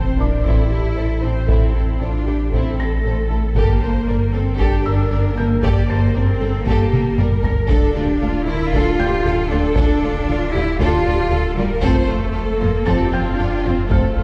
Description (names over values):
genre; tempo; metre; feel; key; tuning
cinematic, hybrid orchestral and electronic film score; 116 BPM; 4/4; straight; D minor; A4 = 440 Hz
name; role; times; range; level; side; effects
rich symphonic violin section; second line; 0.0-14.2 s; C4 to F5; -30 LUFS; equal; none
warm symphonic viola section; accompaniment; 0.0-14.2 s; E4 to D5; -28 LUFS; equal; none
clear symphonic cello section; bass; 0.0-14.2 s; G3 to F4; -25 LUFS; equal; none
punchy sub bass; bass; 0.0-14.2 s; D1 to A1; -26 LUFS; equal; none
sub drop and reverse cymbal; sound effects; 0.0-1.5, 13.9-14.2 s; none; -29 LUFS; equal; none
rich symphonic double bass section; bass; 0.2-14.2 s; G1 to F2; -24 LUFS; equal; none
felt-muted upright piano; texture; 0.2-14.2 s; D5 to Bb6; -35 LUFS; equal; tape echo
mellow French horn section; sustained chords; 0.5-14.1 s; E4 to C5; -32 LUFS; equal; none
taiko ensemble; drums; 0.5-14.2 s; none; -24 LUFS; equal; none
room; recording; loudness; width
wet concert hall reverb, RT60 2.4 s; heard from further back in the room; -18 LUFS; mono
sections
0.0-14.2 A section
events
impact 0.0-1.5; drum fill 6.9-7.7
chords
0.0 Am; 3.6 Gmadd9; 7.7 Dm; 11.8 F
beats
0.46 0.98 | 1.49 2.01 2.53 3.04 | 3.56 4.08 4.60 5.11 | 5.63 6.15 6.67 7.18 | 7.70 8.22 8.73 9.25 | 9.77 10.29 10.80 11.32 | 11.84 12.36 12.87 13.39 | 13.91